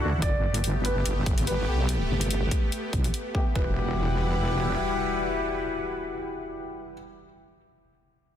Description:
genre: heavy wobble dubstep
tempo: 144 BPM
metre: 4/4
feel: swing 54% on 16ths, half-time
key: E minor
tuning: A4 = 441 Hz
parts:
  - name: supersaw pad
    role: sustained chords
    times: 0.0-6.9 s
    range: D3 to F#5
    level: -32 LUFS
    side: equal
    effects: phaser, sidechain pumping
  - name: dark brass ensemble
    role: stabs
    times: 0.0-6.9 s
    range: A3 to G4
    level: -32 LUFS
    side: left 4 dB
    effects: low-pass filter, dub echo
  - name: wobble bass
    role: bass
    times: 0.0-4.8 s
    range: E1 to D2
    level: -26 LUFS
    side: equal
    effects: chorus, overdrive
  - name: dark baby grand piano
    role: melody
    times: 0.2-6.9 s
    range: B4 to D5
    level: -35 LUFS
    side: right 1 dB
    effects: dub echo
  - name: electronic hi-hat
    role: drums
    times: 0.2-3.2 s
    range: none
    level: -33 LUFS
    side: left 2 dB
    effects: small room ambience
  - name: electronic kick drum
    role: drums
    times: 0.2-3.6 s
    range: none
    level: -26 LUFS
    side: equal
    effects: small room ambience
  - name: impact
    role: sound effects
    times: 3.6-7.0 s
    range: none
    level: -35 LUFS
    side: equal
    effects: none
room: light reverb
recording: dense, heavily limited modern master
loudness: -24 LUFS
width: side -10 dB against mid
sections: 0.0-3.6 A section; 3.6-6.9 B section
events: filter sweep on brass ensemble 0.0-3.6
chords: 0.2 Gadd9; 3.6 Emadd9

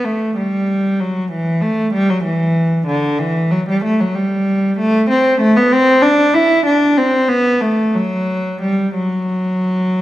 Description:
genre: classical, baroque-style suite movement for unaccompanied cello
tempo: 63 BPM (dotted quarters)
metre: 12/8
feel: rubato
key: unclear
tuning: A4 = 437 Hz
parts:
  - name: rich cello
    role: solo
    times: 0.0-10.0 s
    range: D3 to E4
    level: -13 LUFS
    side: equal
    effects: none
room: wet recital hall reverb, RT60 1.4 s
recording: none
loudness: -13 LUFS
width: side -14 dB against mid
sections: 0.0-10.0 A section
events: none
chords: none

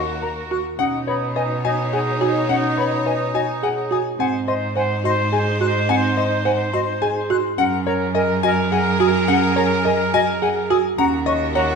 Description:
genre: classical, minimalist pattern music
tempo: 106 BPM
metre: 3/4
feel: straight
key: unclear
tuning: A4 = 440 Hz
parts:
  - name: clear concert grand piano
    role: melody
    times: 0.0-11.7 s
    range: C#5 to C#6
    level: -24 LUFS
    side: left 11 dB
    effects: none
  - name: rich studio string section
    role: sustained chords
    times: 0.0-11.8 s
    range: D#4 to C#5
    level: -28 LUFS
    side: left 2 dB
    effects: none
  - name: folk marimba with soft mallets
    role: arpeggios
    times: 0.0-11.7 s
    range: B#3 to C#5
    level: -22 LUFS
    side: right 6 dB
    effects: none
  - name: rich cello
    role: bass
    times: 0.0-11.8 s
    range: D#2 to B2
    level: -25 LUFS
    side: right 2 dB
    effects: none
  - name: clear oboe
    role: second line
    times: 0.1-11.8 s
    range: D#4 to B#4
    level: -26 LUFS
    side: right 3 dB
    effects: none
  - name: silver concert flute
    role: arpeggios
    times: 0.2-11.6 s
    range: D#5 to F#6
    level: -27 LUFS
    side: left 4 dB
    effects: none
room: moderate scoring stage reverb, RT60 1.6 s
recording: none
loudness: -17 LUFS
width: side -5 dB against mid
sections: 0.0-11.8 A section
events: none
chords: 0.0 D#m; 0.8 Badd9; 4.2 G#; 7.6 F#add9; 11.0 D#m

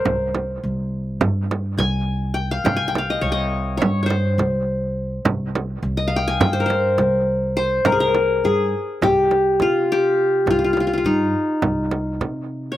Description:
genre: Turkish makam ensemble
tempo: 207 BPM (eighths)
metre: 9/8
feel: straight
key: C makam kurdi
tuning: A4 = 440 Hz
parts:
  - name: qanun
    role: melody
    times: 0.0-12.8 s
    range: Eb4 to Ab5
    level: -19 LUFS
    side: left 1 dB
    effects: slapback echo
  - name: upright bass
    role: bass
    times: 0.1-12.8 s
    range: C2 to C3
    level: -24 LUFS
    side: equal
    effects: none
  - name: frame drum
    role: percussion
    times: 0.1-12.3 s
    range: none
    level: -23 LUFS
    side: right 4 dB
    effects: slapback echo
room: little or no reverb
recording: recorded outdoors, with no room sound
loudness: -18 LUFS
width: side -13 dB against mid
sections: 0.0-7.9 A section; 7.9-12.8 B section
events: none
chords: none

